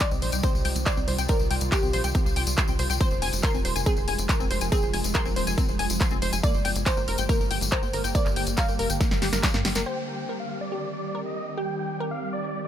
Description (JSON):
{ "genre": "uplifting trance", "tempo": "140 BPM", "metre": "4/4", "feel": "straight", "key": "C minor", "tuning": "A4 = 438 Hz", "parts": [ { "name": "glassy wavetable pluck", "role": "second line", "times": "0.0-12.7 s", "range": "G4 to F5", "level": "-32 LUFS", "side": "right 1 dB", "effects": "chorus, digital delay" }, { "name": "shimmering ambient pad", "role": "sustained chords", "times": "0.0-12.7 s", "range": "C3 to G4", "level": "-33 LUFS", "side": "right 1 dB", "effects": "chorus, built-in reverb, sidechain pumping" }, { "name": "tight sequenced synth", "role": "arpeggios", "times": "0.0-9.8 s", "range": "Bb3 to C6", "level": "-32 LUFS", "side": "left 3 dB", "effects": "chorus, sidechain pumping, tape echo" }, { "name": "electronic kick drum", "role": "drums", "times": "0.0-9.5 s", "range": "none", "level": "-25 LUFS", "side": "equal", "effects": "overdrive" }, { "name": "punchy analog drum machine", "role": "drums", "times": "0.0-9.8 s", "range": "handclaps, hi-hat, snare drum", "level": "-31 LUFS", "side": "equal", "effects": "sidechain pumping on hats" }, { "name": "tambourine", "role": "percussion", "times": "0.0-9.8 s", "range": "none", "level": "-34 LUFS", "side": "left 5 dB", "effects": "none" }, { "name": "tight sequencer bass", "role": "bass", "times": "0.1-9.8 s", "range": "Eb1 to G2", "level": "-29 LUFS", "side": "equal", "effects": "sidechain pumping" }, { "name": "big supersaw lead", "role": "melody", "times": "9.9-12.7 s", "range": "D5 to G5", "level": "-34 LUFS", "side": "right 1 dB", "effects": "sidechain pumping, low-pass filter, ping-pong delay" } ], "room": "little or no reverb", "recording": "none", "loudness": "-23 LUFS", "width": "side -10 dB against mid", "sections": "0.0-9.9 A section; 9.9-12.7 B section", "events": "drum fill 9.0-9.9; band accent 9.8; filter sweep on supersaw synth 9.9-12.7", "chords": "0.0 Cm; 3.0 Fm; 6.4 Gm; 9.9 Cm" }